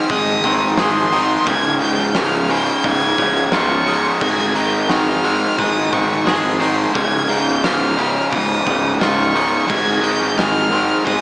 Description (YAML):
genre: post-rock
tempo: 88 BPM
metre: 4/4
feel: straight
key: Db lydian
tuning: A4 = 441 Hz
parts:
  - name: clear violin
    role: melody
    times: 0.0-11.2 s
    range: C6 to Ab6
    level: -21 LUFS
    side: equal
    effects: digital delay
  - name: twangy electric guitar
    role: arpeggios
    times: 0.0-11.2 s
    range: Db2 to Ab4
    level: -22 LUFS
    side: equal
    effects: digital delay
  - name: overdriven electric guitar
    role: riff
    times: 0.0-11.2 s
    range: Db2 to Ab3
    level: -18 LUFS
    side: equal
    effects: none
  - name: fuzz fingered electric bass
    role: bass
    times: 0.1-11.2 s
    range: Db1 to Ab1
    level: -23 LUFS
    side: equal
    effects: overdrive
  - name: oversized low-tuned drum kit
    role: drums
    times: 0.1-11.2 s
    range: crash cymbal, hi-hat, kick drum, snare drum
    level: -22 LUFS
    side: equal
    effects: none
room: light reverb, small room ambience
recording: small speaker sound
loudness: -14 LUFS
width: side -24 dB against mid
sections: 0.0-11.2 A section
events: none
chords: 0.0 Ab; 1.5 Db; 4.2 Ab; 7.0 Db; 9.7 Ab